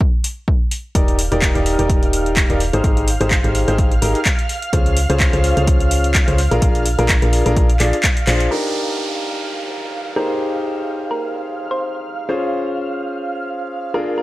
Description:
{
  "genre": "piano house",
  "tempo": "127 BPM",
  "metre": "4/4",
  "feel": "swing 55% on 16ths",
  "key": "Eb major",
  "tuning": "A4 = 441 Hz",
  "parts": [
    { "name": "electronic kick drum", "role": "drums", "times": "0.0-8.1 s", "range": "none", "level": "-17 LUFS", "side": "equal", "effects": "none" },
    { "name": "punchy analog drum machine", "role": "drums", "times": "0.2-8.5 s", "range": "handclaps, hi-hat", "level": "-21 LUFS", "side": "equal", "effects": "none" },
    { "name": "clear grand piano", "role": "riff", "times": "0.9-14.2 s", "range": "Db4 to D5", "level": "-21 LUFS", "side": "left 1 dB", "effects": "sidechain pumping" },
    { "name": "solid FM bass", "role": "bass", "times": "0.9-8.5 s", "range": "Eb1 to Db2", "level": "-18 LUFS", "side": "equal", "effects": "sidechain pumping" },
    { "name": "analog string pad", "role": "sustained chords", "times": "1.0-14.2 s", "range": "F5 to F6", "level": "-28 LUFS", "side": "right 3 dB", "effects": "ensemble chorus, sidechain pumping" },
    { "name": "downlifter", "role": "sound effects", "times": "8.5-12.3 s", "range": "none", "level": "-29 LUFS", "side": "right 2 dB", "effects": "none" },
    { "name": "thumb-piano-like synth pluck", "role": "melody", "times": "10.2-14.2 s", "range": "Bb4 to C5", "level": "-25 LUFS", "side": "equal", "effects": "chorus, cassette tape, tape echo" }
  ],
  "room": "little or no reverb",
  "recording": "dry, gritty hardware recording",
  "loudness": "-15 LUFS",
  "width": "side -17 dB against mid",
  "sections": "0.0-8.5 A section; 8.5-14.2 B section",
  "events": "drum fill 8.3; band accent 8.3",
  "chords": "0.0 N.C.; 1.0 Ebmaj7; 2.6 Abmaj7; 4.7 Dbmaj7; 6.4 Bb7; 8.5 Ebmaj7; 10.2 Abmaj7; 12.3 Dbmaj7"
}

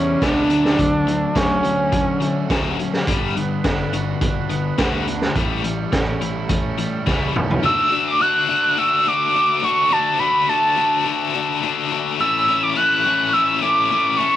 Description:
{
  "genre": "indie rock",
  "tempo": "105 BPM",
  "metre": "4/4",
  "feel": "straight",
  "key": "unclear",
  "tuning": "A4 = 441 Hz",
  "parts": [
    { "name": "overdriven synth lead", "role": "melody", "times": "0.0-2.8, 7.7-14.4 s", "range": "C#4 to F#6", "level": "-18 LUFS", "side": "right 1 dB", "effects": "cassette tape, analog delay" },
    { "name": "biting overdriven guitar", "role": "riff", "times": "0.0-14.4 s", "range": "G2 to F#4", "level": "-22 LUFS", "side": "left 9 dB", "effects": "tremolo, cassette tape" },
    { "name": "crunchy overdriven guitar", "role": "riff", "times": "0.0-7.6 s", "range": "A2 to F#4", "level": "-29 LUFS", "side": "right 9 dB", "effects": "lush chorus, cassette tape, analog delay" },
    { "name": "fuzz picked electric bass", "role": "bass", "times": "0.0-7.6 s", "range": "G1 to D3", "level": "-26 LUFS", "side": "right 1 dB", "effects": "overdrive" },
    { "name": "raw garage drum kit", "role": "drums", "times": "0.2-7.6 s", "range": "hi-hat, kick drum, snare drum, toms", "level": "-22 LUFS", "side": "right 1 dB", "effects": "cassette tape" },
    { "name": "combo organ", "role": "sustained chords", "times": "3.1-14.4 s", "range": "C#4 to D6", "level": "-32 LUFS", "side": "right 2 dB", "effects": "spring reverb, cassette tape" }
  ],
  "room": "small room reverb",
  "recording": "home recording on cassette",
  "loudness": "-16 LUFS",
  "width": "side -12 dB against mid",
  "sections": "0.0-7.6 A section; 7.6-14.4 B section",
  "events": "drum fill 7.1-7.6",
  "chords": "0.5 Dmaj7; 3.1 Gmaj7; 5.4 A7; 7.6 Dadd9; 12.2 Aadd9"
}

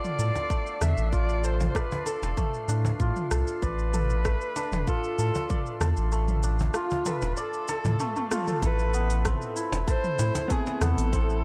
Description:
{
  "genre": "organic downtempo",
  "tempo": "96 BPM",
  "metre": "4/4",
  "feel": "straight",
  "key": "unclear",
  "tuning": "A4 = 440 Hz",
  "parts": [
    { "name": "warm kamancheh", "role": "melody", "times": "0.0-11.4 s", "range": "F4 to E5", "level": "-36 LUFS", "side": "equal", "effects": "tape echo" },
    { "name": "santur", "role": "arpeggios", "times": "0.0-11.4 s", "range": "A3 to D5", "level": "-34 LUFS", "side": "equal", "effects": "tape echo" },
    { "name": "organic electronic drum kit", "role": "drums", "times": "0.0-11.4 s", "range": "cabasa, hi-hat, rim click, toms", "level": "-36 LUFS", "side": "equal", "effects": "none" },
    { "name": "wind-like tuned noise texture", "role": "texture", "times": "0.0-8.6 s", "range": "C7", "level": "-52 LUFS", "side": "equal", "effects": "none" },
    { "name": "warm sub bass", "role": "bass", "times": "0.2-11.4 s", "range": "E1 to A2", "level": "-28 LUFS", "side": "equal", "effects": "none" },
    { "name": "cajon", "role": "percussion", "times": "0.4-10.9 s", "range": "none", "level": "-36 LUFS", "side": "equal", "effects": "none" },
    { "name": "electronic kick drum", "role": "drums", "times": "0.5-11.3 s", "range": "none", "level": "-31 LUFS", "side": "equal", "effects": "none" },
    { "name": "mellow electric guitar", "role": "accompaniment", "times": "8.6-11.4 s", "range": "A3 to A4", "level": "-37 LUFS", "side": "equal", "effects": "sidechain pumping" }
  ],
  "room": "little or no reverb",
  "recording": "dry, gritty hardware recording",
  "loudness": "-27 LUFS",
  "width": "mono",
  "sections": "0.0-8.6 A section; 8.6-11.4 B section",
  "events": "kick drops out 6.1-8.6; drum fill 8.0-8.6; band accent 8.3-8.6",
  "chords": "0.0 Dm"
}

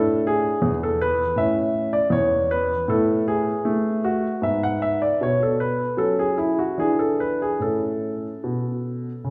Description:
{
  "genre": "classical, baroque-style suite movement for grand piano",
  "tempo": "72-81 BPM",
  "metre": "4/4",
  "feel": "rubato",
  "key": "A major",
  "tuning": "A4 = 441 Hz",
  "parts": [
    { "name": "warm grand piano", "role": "solo", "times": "0.0-9.3 s", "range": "E2 to F#5", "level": "-22 LUFS", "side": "equal", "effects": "none" }
  ],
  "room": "wet recital hall reverb, RT60 1.6 s",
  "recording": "heard from further back in the room",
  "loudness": "-22 LUFS",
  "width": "mono",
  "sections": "0.0-9.3 A section",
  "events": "none",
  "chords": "0.0 E7sus4; 1.4 A; 2.9 F#madd11/A; 4.4 G#m; 6.0 F#5; 6.8 E7; 7.6 A"
}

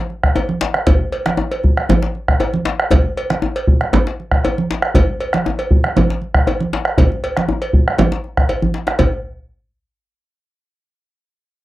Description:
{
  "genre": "west african traditional, West African drum ensemble",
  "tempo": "118 BPM",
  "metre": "4/4",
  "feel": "straight",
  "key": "none",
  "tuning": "none",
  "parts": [
    { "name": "congas", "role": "percussion", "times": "0.1-9.2 s", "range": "none", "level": "-20 LUFS", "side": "right 4 dB", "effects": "none" },
    { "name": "bombo", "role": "percussion", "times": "0.2-9.2 s", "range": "none", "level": "-15 LUFS", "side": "equal", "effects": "none" },
    { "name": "cowbell", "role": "percussion", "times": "0.4-9.2 s", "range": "none", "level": "-22 LUFS", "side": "equal", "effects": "none" },
    { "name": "djembe", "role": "percussion", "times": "0.4-9.2 s", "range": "none", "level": "-20 LUFS", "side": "left 2 dB", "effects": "none" }
  ],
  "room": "light reverb",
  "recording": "dry, close 1970s-style studio recording",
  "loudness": "-14 LUFS",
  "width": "side -16 dB against mid",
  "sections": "0.0-9.0 A section; 9.0-11.0 B section",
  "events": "speeding up 0.0-11.0; drum fill 8.5-9.0",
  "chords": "none"
}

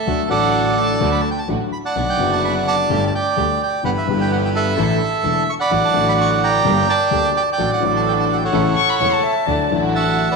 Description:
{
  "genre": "tango",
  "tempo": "128 BPM",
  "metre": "4/4",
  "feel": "rubato",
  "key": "D major",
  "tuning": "A4 = 440 Hz",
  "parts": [
    { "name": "bandoneon", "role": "melody", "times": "0.0-10.4 s", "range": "A4 to C#6", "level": "-18 LUFS", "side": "right 4 dB", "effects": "none" },
    { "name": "warm concert grand piano", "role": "accompaniment", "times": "0.1-10.4 s", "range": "E1 to G4", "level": "-22 LUFS", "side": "left 11 dB", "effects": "none" },
    { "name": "warm chamber string section", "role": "stabs", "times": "0.1-10.4 s", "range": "A3 to Bb4", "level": "-26 LUFS", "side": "right 4 dB", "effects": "tape echo" },
    { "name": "clear double bass", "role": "bass", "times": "0.1-10.4 s", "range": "E1 to D2", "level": "-24 LUFS", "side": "right 2 dB", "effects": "none" },
    { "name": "warm violin", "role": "second line", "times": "8.8-9.8 s", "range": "A5 to C#6", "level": "-20 LUFS", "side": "left 8 dB", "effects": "none" },
    { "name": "breathy bright concert flute", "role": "second line", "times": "9.0-9.8 s", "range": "C#5 to E5", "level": "-22 LUFS", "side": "right 3 dB", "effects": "none" }
  ],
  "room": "wet echo chamber reverb, RT60 1.3 s, studio reverb",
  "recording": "1960s-style stereo",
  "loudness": "-15 LUFS",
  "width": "side -3 dB against mid",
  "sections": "0.0-10.4 A section",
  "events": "none",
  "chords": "0.1 D; 2.0 Bm; 2.9 Gsus2; 3.8 Em/G; 4.8 Asus4; 5.7 Dadd9/A; 6.6 Gm; 7.6 D/A; 8.5 A; 9.5 Dadd9"
}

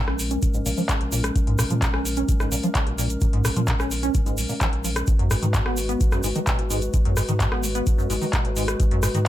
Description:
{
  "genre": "acid house",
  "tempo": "129 BPM",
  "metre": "4/4",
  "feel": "straight",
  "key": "Bb phrygian",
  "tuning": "A4 = 440 Hz",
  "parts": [
    { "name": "dark analog pad", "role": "sustained chords", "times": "0.0-9.3 s", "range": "Ab3 to Cb5", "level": "-30 LUFS", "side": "left 1 dB", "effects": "chorus, vintage 12-bit sampler grit, sidechain pumping" },
    { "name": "liquid acid bass", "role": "riff", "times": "0.0-9.2 s", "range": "Gb2 to Db4", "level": "-26 LUFS", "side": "equal", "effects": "phaser, lush chorus, sidechain pumping" },
    { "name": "warm sub bass", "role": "bass", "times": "0.1-9.3 s", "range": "Ab1 to Bb2", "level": "-28 LUFS", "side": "equal", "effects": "sidechain pumping" },
    { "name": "electro analog drum machine", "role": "drums", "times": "0.1-9.2 s", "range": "handclaps, hi-hat, rim click", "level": "-28 LUFS", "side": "left 1 dB", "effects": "none" },
    { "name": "tube shaker", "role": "percussion", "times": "0.2-9.2 s", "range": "none", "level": "-34 LUFS", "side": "right 5 dB", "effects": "none" },
    { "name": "electronic kick drum", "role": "drums", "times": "0.4-8.9 s", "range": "none", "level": "-23 LUFS", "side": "equal", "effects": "none" }
  ],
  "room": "light reverb",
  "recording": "none",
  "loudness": "-20 LUFS",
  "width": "side -13 dB against mid",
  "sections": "0.0-9.3 A section",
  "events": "filter sweep on acid bass 0.0-9.3",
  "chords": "0.0 Bbm7; 5.1 Abm7"
}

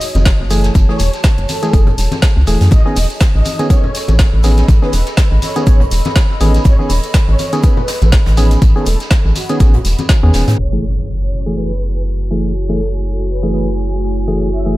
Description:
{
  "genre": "deep house",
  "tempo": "122 BPM",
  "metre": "4/4",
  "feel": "swing 56% on 16ths",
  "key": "F# dorian",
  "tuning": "A4 = 440 Hz",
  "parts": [
    { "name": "breathy flute-like synth lead", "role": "melody", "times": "0.0-14.8 s", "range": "F#4 to E5", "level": "-26 LUFS", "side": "right 1 dB", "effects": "ensemble chorus, analog delay" },
    { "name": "big rock drum kit", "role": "drums", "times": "0.0-10.6 s", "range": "hi-hat, shaker, snare drum", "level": "-32 LUFS", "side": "right 2 dB", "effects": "high-pass filter on hats, high-pass filter on snare, high-pass filter on perc, high-pass filter on room, tape echo" },
    { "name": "deep house drum kit", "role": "drums", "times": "0.0-14.6 s", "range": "hi-hat, snare drum", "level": "-22 LUFS", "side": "equal", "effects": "low-pass filter on hats, low-pass filter on snare" },
    { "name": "shekere", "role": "percussion", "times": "0.0-14.6 s", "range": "none", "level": "-29 LUFS", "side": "right 1 dB", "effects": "tape echo" },
    { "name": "warbly tape-like pad", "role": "texture", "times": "0.0-14.8 s", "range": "F#4 to B5", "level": "-27 LUFS", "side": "equal", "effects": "chorus, built-in reverb, sidechain pumping" },
    { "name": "rubbery square bass", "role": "bass", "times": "0.1-14.8 s", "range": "E1 to A2", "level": "-14 LUFS", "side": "equal", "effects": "tube saturation, sidechain pumping" },
    { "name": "congas", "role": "percussion", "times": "0.2-10.1 s", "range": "none", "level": "-25 LUFS", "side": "left 3 dB", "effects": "tape echo" },
    { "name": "electronic kick drum", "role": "drums", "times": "0.3-10.2 s", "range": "none", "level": "-11 LUFS", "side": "equal", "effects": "none" },
    { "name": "percussive organ stab", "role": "stabs", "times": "0.5-14.8 s", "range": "D#3 to G#4", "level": "-20 LUFS", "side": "equal", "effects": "chorus, cassette tape, sidechain pumping, dub echo" },
    { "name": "hollow soft pad", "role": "sustained chords", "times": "11.1-14.8 s", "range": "A3 to F#4", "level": "-27 LUFS", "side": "right 3 dB", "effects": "chorus, sidechain pumping" },
    { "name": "impact", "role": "sound effects", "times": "10.6-12.6 s", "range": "none", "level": "-24 LUFS", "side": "equal", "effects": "none" }
  ],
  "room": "small room ambience",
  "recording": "echo-heavy mix, low-pass filter",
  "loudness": "-11 LUFS",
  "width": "side -18 dB against mid",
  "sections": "0.0-10.6 A section; 10.6-14.8 B section",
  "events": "impact 10.6-12.6; filter sweep on synth stab 10.6-14.8",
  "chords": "0.0 F#m9; 2.7 Amaj9#11; 10.6 F#m9"
}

